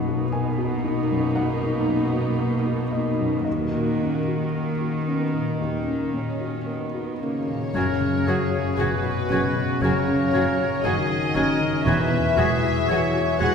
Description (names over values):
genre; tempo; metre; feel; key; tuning
cinematic, emotional film score for orchestra; 56-59 BPM; 4/4; rubato; unclear; A4 = 439 Hz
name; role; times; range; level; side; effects
dark baby grand piano; accompaniment; 0.0-13.5 s; B1 to G#5; -26 LUFS; equal; none
warm studio viola section; accompaniment; 0.0-13.5 s; F#3 to F#4; -30 LUFS; right 1 dB; none
concert harp; arpeggios; 0.0-13.5 s; E2 to G#5; -31 LUFS; left 4 dB; none
rich symphonic cello section; bass; 0.0-13.5 s; E2 to D#3; -29 LUFS; right 1 dB; none
warm symphonic violin section; melody; 7.2-13.5 s; B4 to F#5; -27 LUFS; left 5 dB; none
warm French horn section; sustained chords; 7.2-13.5 s; B2 to F#3; -28 LUFS; left 3 dB; none
bright clarinet; second line; 7.7-13.5 s; F#4; -33 LUFS; equal; none
mellow hollow silver concert flute; second line; 7.7-13.5 s; G#6; -31 LUFS; equal; none
warm symphonic double bass section; bass; 7.7-13.5 s; E1 to F#1; -30 LUFS; right 3 dB; none
dark studio violin section; second line; 7.8-13.5 s; F#4 to G#4; -32 LUFS; left 2 dB; none
warm oboe; second line; 7.8-13.5 s; F#4 to C#5; -29 LUFS; right 2 dB; none
room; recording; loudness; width
wet church reverb, RT60 3.5 s; recorded in a church or concert hall; -21 LUFS; side -6 dB against mid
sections
0.0-7.8 A section; 7.8-13.5 A section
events
none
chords
0.0 Bmaj7; 3.5 D#m7; 7.8 F#sus2; 11.9 Eadd9